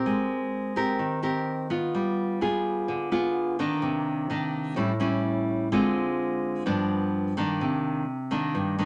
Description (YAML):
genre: bossa nova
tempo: 127 BPM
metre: 4/4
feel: straight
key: C minor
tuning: A4 = 439 Hz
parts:
  - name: nylon-string guitar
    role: solo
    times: 0.0-8.9 s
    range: G2 to Bb4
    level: -27 LUFS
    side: equal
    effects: none
room: wet studio reverb, RT60 0.7 s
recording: none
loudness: -27 LUFS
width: mono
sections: 0.0-7.6 A section; 7.6-8.9 B section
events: none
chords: 0.1 Abmaj9; 1.9 G7b9; 3.8 Cm9; 4.8 A7; 5.7 Dm7b5; 6.7 G7; 7.6 Cm9